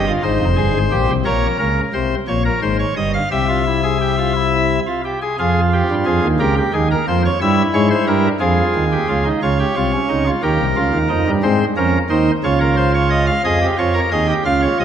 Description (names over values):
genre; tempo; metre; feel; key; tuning
classical, baroque-style 3-part fugue for pipe organ; 59 BPM (dotted quarters); 6/8; straight; F minor; A4 = 440 Hz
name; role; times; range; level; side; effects
pipe organ, cornet; solo; 0.0-14.8 s; F1 to F5; -14 LUFS; equal; none
room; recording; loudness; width
wet scoring stage reverb, RT60 1.8 s; none; -14 LUFS; side -8 dB against mid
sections
0.0-5.4 A section; 5.4-9.4 B section; 9.4-14.8 A section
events
none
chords
0.2 Abmaj7; 1.3 Gdim/Bb; 3.3 C; 5.4 Fm; 6.4 Gm7b5/Db; 7.4 C7/G; 8.4 Fm; 9.4 Eb13; 11.4 Ab; 12.4 Db; 13.4 Fm